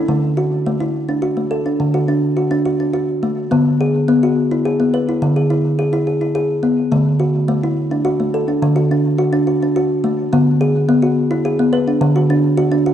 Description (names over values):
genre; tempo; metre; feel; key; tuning
world meditative; 106 BPM; 3/4; straight; D lydian; A4 = 440 Hz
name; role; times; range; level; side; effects
kalimba; solo; 0.0-12.9 s; D3 to B4; -14 LUFS; equal; diffuse ambient delay
room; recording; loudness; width
wet echo chamber reverb, RT60 1.6 s, small room ambience; dark, warm production; -14 LUFS; side -10 dB against mid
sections
0.1-12.9 A section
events
none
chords
0.1 D; 3.5 E/D; 6.9 D; 10.3 E/D (rootless); 12.0 D